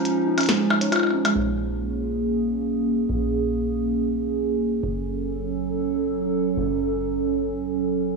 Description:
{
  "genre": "IDM",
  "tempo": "138 BPM",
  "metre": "4/4",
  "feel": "straight",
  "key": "Bb minor",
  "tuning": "A4 = 439 Hz",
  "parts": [
    { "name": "warbly tape-like pad", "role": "sustained chords", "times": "0.0-8.2 s", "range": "F3 to A4", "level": "-23 LUFS", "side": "right 2 dB", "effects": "chorus, built-in reverb" },
    { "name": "harp-like synth pluck", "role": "arpeggios", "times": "0.1-1.3 s", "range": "Ab3 to Db5", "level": "-26 LUFS", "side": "right 2 dB", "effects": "chorus, tape echo" },
    { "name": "glitchy drum kit", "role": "drums", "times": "0.1-1.3 s", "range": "hi-hat, percussion blips, snare drum", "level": "-23 LUFS", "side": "left 2 dB", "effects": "low-pass filter on hats, low-pass filter on perc, low-pass filter on snare, low-pass filter on room" },
    { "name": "deep acid bass", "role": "bass", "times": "1.4-8.2 s", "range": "Gb1 to Bb1", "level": "-32 LUFS", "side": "right 1 dB", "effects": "none" }
  ],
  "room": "moderate echo chamber reverb, RT60 1.7 s, digital ambience",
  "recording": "dry, gritty hardware recording, cassette tape, studio ambience",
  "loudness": "-21 LUFS",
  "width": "side -3 dB against mid",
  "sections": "0.0-1.4 A section; 1.4-8.2 B section",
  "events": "break 0.0-1.4",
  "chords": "0.0 Dbadd9; 1.4 Bbm7; 4.8 Gbm"
}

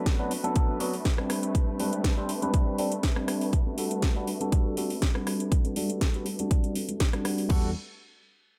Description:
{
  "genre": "filtered disco house",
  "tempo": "121 BPM",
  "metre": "4/4",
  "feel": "swing 53% on 16ths",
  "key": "unclear",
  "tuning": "A4 = 440 Hz",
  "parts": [
    { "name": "bell-like tine electric piano", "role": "accompaniment", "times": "0.0-7.7 s", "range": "F#3 to C5", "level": "-33 LUFS", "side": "equal", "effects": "phaser, sidechain pumping, low-pass filter" },
    { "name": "warm symphonic string section", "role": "sustained chords", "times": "0.0-7.5 s", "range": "A3 to B4", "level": "-42 LUFS", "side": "equal", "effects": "sidechain pumping, low-pass filter" },
    { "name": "direct-recorded clean electric guitar", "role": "riff", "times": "0.0-7.7 s", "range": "G3 to B4", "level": "-40 LUFS", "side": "equal", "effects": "none" },
    { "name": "electronic kick drum", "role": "drums", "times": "0.1-7.6 s", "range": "none", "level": "-27 LUFS", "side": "equal", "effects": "none" },
    { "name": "house drum kit", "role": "drums", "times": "0.1-7.6 s", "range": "crash cymbal, hi-hat, rim click, snare drum", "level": "-36 LUFS", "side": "equal", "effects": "sidechain pumping on hats, sidechain pumping on cymbals" },
    { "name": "maracas and congas", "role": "percussion", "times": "0.1-7.5 s", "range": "none", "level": "-40 LUFS", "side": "equal", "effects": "none" },
    { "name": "fingered electric bass", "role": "bass", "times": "7.5-7.7 s", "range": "E2", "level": "-35 LUFS", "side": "equal", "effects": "sidechain pumping, low-pass filter" }
  ],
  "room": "little or no reverb",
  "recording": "none",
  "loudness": "-28 LUFS",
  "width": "mono",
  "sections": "0.0-7.5 A section; 7.5-8.6 B section",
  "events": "filter sweep 0.0-7.5",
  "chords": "0.0 Bm7; 1.3 Am11; 3.5 Gmaj9; 7.5 Em11"
}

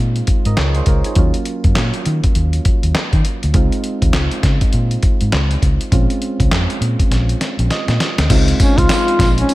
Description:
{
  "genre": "R&B, new jack swing",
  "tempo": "101 BPM",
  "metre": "4/4",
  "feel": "swing 61% on 16ths",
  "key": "unclear",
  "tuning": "A4 = 441 Hz",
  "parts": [
    { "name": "soft electric-piano-like synth keys", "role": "accompaniment", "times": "0.0-9.5 s", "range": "Gb3 to Eb5", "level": "-23 LUFS", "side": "right 2 dB", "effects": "chorus" },
    { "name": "vintage muted fingered electric bass", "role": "bass", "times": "0.0-9.4 s", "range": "Bb1 to Eb3", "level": "-17 LUFS", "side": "equal", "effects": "none" },
    { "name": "dusty soul sampler-style drum kit", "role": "drums", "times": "0.2-9.5 s", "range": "crash cymbal, handclaps, hi-hat, kick drum, snare drum, tambourine", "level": "-16 LUFS", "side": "equal", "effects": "gated reverb" },
    { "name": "mellow duduk", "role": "melody", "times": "8.6-9.5 s", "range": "Db4 to F4", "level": "-16 LUFS", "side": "left 1 dB", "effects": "none" }
  ],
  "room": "little or no reverb",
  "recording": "none",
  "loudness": "-13 LUFS",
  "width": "side -18 dB against mid",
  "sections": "0.0-8.3 A section; 8.3-9.5 B section",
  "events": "drum fill 7.1-8.3; synth keys fill 7.4-8.3",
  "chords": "0.0 Dbmaj7; 1.2 Ebm7; 3.5 Dbmaj7; 5.9 Bbm7; 8.3 Dbmaj7"
}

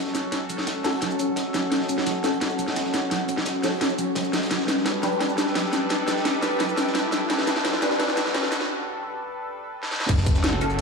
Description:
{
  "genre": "dark technical drum and bass",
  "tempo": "172 BPM",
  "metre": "4/4",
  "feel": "straight",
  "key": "F# phrygian",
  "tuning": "A4 = 440 Hz",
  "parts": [
    { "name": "sweeping resonant pad", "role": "sustained chords", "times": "0.0-10.8 s", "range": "F#3 to B4", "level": "-30 LUFS", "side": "equal", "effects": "chorus, sidechain pumping" },
    { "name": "soft round pluck", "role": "arpeggios", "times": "0.0-8.6 s", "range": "F#3 to D4", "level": "-30 LUFS", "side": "right 2 dB", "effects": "chorus, cassette tape, sidechain pumping, analog delay" },
    { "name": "riser and sub drop", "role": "sound effects", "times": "0.8-10.8 s", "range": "none", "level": "-34 LUFS", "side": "equal", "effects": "none" },
    { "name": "warbly tape-like pad", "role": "texture", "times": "0.0-10.8 s", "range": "C#4 to A5", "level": "-30 LUFS", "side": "left 2 dB", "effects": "chorus, built-in reverb, sidechain pumping" },
    { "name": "crunchy breakbeat drum kit", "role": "drums", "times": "0.1-10.8 s", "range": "hi-hat, snare drum", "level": "-36 LUFS", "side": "equal", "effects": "none" },
    { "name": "drum and bass drum kit", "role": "drums", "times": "0.1-10.8 s", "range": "crash cymbal, hi-hat, shaker, snare drum", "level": "-26 LUFS", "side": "equal", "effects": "none" },
    { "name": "filtered dub chord stab", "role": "stabs", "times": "0.8-7.9, 10.6-10.7 s", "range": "C#4 to B4", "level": "-31 LUFS", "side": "left 2 dB", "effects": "phaser, ensemble chorus, analog delay" },
    { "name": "snarling distorted saw bass", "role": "bass", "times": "10.1-10.8 s", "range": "F#1", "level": "-25 LUFS", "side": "equal", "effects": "distortion, overdrive" },
    { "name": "electronic kick drum", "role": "drums", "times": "10.1-10.3 s", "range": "none", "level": "-22 LUFS", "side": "equal", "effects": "none" }
  ],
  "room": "wet lush hall reverb, RT60 1.9 s",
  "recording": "dreamy mix soaked in reverb, high-pass filter",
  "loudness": "-22 LUFS",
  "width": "side -4 dB against mid",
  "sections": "0.0-10.1 A section",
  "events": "build-up 0.0-10.1; drum fill 0.0-8.7, 9.8; filter sweep on synth pluck 0.0-10.1; break 8.7-10.1; impact 10.1-10.8",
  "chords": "0.0 F#m; 4.5 G; 10.1 F#m"
}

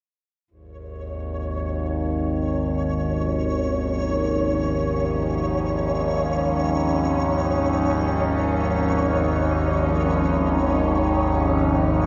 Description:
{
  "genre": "ambient",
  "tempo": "free time",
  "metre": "none",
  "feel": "none",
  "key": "unclear",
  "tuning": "A4 = 441 Hz",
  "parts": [
    { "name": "dark studio cello section", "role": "sustained chords", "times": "0.5-12.1 s", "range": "E#3 to D#4", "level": "-29 LUFS", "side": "equal", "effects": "shimmer reverb" },
    { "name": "overtone-sweeping drone", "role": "drone", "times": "0.8-12.1 s", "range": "G#1 to D#2", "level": "-24 LUFS", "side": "equal", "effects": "chorus, built-in reverb" },
    { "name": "flickering grainy texture", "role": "texture", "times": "1.0-12.1 s", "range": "C#5", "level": "-31 LUFS", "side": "equal", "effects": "built-in reverb, shimmer reverb" }
  ],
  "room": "wet lush hall reverb, RT60 2.5 s",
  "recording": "dreamy mix soaked in reverb",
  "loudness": "-22 LUFS",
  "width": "mono",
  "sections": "0.5-12.1 A section",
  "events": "fade-in on cello section 0.5-12.1",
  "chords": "0.5 C#"
}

